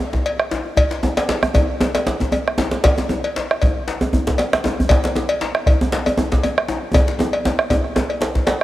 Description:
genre	west african traditional, West African drum ensemble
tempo	117 BPM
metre	4/4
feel	swing 54% on 16ths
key	none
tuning	none
part	bombo	percussion	0.1-8.6 s	none	-20 LUFS	right 1 dB	none
part	djembe	percussion	0.1-8.5 s	none	-25 LUFS	left 2 dB	none
part	cowbell	percussion	0.3-8.6 s	none	-23 LUFS	left 2 dB	none
part	djembe	percussion	1.0-8.6 s	none	-21 LUFS	right 1 dB	none
room	moderate lush hall reverb, RT60 2.7 s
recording	home recording on cassette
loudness	-16 LUFS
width	side -15 dB against mid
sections	0.0-8.6 A section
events	drum fill 6.9-8.6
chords	none

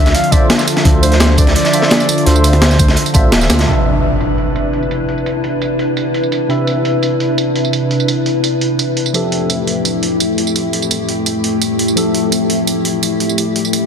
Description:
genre	liquid drum and bass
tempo	170 BPM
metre	4/4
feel	straight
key	C major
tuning	A4 = 440 Hz
part	mellow flugelhorn	melody	0.0-3.3 s	C5 to F5	-20 LUFS	equal	ping-pong delay
part	bright tine electric piano	accompaniment	0.0-13.9 s	C3 to E5	-19 LUFS	equal	phaser, tape echo
part	glassy FM pad	sustained chords	0.0-13.9 s	F2 to E5	-17 LUFS	left 1 dB	ensemble chorus, built-in reverb, sidechain pumping
part	dark detuned saw bass	bass	0.0-3.7 s	D1 to D2	-13 LUFS	equal	none
part	breakbeat sampler-style drum kit	drums	0.1-13.8 s	crash cymbal, hi-hat, snare drum, tambourine	-18 LUFS	right 2 dB	low-pass filter on hats, low-pass filter on cymbals, low-pass filter on perc, low-pass filter on snare
part	crunchy breakbeat drum kit	drums	0.1-3.7 s	hi-hat, snare drum	-20 LUFS	equal	high-pass filter on hats, high-pass filter on snare, high-pass filter on room
part	electronic kick drum	drums	0.3-3.2 s	none	-12 LUFS	equal	none
part	impact	sound effects	3.7-5.1 s	none	-19 LUFS	equal	none
room	moderate lush hall reverb, RT60 1.8 s, studio ambience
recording	dense, heavily limited modern master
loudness	-12 LUFS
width	side -6 dB against mid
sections	0.0-3.7 A section; 3.7-13.9 B section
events	drop 0.0-3.7; kick drops out 3.3-3.7; drum fill 3.5; impact 3.7-5.1; filter sweep on drum 3.7-13.9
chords	0.0 Dm9; 3.7 Cmaj7; 9.1 Fmaj7

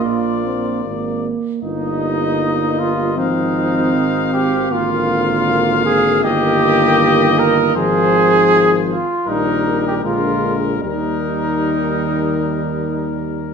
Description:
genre	classical, brass quintet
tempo	78 BPM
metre	4/4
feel	straight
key	Eb major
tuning	A4 = 440 Hz
part	clear trumpet	melody	0.0-13.5 s	Bb4 to F5	-23 LUFS	left 10 dB	none
part	mellow trumpet	second line	0.0-13.2 s	Eb4 to Bb4	-18 LUFS	right 2 dB	none
part	clear French horn	accompaniment	0.0-13.5 s	F3 to C4	-22 LUFS	left 2 dB	none
part	dark trombone	accompaniment	0.0-13.5 s	D3 to C4	-24 LUFS	right 2 dB	none
part	warm tuba	bass	0.0-13.5 s	G1 to Eb2	-22 LUFS	right 2 dB	none
room	wet stone room reverb, RT60 1.3 s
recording	none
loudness	-14 LUFS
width	side -6 dB against mid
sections	0.0-13.5 A section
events	none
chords	0.1 Bb; 1.6 Eb/G; 3.2 Fm7/Ab; 4.7 Bb7/Ab; 6.2 Eb/G; 7.8 Fm7/Ab; 9.3 Eb/Bb; 10.0 Bb7; 10.8 Eb

